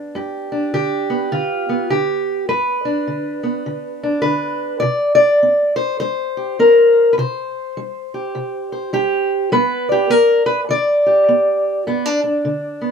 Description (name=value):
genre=acoustic country blues, solo or duo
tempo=102 BPM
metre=4/4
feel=swing 61% on 8ths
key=G major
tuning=A4 = 440 Hz
part: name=fingerpicked steel-string acoustic guitar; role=solo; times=0.0-12.9 s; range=G2 to D5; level=-15 LUFS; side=equal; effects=none
room=light reverb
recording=minimal, uncompressed stereo recording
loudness=-15 LUFS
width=side -6 dB against mid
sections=0.0-12.9 A section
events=none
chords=0.0 G; 4.8 C5; 9.5 G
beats=| 0.15 0.74 1.32 1.91 | 2.49 3.08 3.66 4.25 | 4.83 5.42 6.01 6.59 | 7.18 7.76 8.35 8.94 | 9.52 10.11 10.70 11.28 | 11.87 12.46